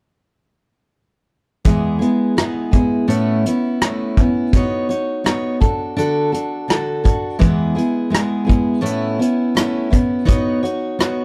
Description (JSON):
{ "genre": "folk rock and heartland rock", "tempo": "83 BPM", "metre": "4/4", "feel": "straight", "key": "E mixolydian", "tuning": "A4 = 440 Hz", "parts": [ { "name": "picked steel-string acoustic guitar", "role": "accompaniment", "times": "1.6-11.2 s", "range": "E2 to C#5", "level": "-20 LUFS", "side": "equal", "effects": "none" }, { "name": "soft brush drum kit", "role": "drums", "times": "1.6-11.2 s", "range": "hi-hat, kick drum, rim click", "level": "-19 LUFS", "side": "equal", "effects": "none" } ], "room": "studio ambience", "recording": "none", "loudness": "-18 LUFS", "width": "mono", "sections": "1.6-11.2 A section", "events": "none", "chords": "1.6 E; 3.1 Aadd9; 4.5 Badd9; 5.6 D; 7.4 E; 8.8 Aadd9; 10.3 Badd9", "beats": "| 1.64 2.36 3.08 3.80 | 4.52 5.24 5.96 6.68 | 7.40 8.12 8.84 9.56 | 10.28 11.00" }